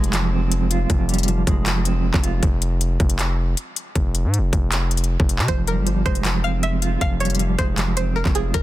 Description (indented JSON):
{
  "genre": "hip hop, trap",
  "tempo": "157 BPM",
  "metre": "4/4",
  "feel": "half-time",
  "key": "F minor",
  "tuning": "A4 = 437 Hz",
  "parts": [
    { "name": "mellow electric guitar", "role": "accompaniment", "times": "0.0-2.4, 5.5-8.6 s", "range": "F3 to F4", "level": "-25 LUFS", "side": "right 4 dB", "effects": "tremolo" },
    { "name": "distorted 808-style bass", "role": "bass", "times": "0.0-8.6 s", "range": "F1 to C3", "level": "-21 LUFS", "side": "equal", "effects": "distortion" },
    { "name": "trap drum kit", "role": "drums", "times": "0.0-8.6 s", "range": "handclaps, hi-hat, kick drum", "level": "-22 LUFS", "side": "equal", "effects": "none" },
    { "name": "string-like resonator pluck", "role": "melody", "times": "5.5-8.6 s", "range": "Ab4 to F5", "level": "-27 LUFS", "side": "right 1 dB", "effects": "chorus, tape echo" }
  ],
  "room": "little or no reverb",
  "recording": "dense, heavily limited modern master",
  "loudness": "-18 LUFS",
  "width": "side -15 dB against mid",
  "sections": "0.0-8.6 A section",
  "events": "break 0.0-5.5",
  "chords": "0.0 Fmadd9; 2.4 N.C.; 5.5 Fmadd9"
}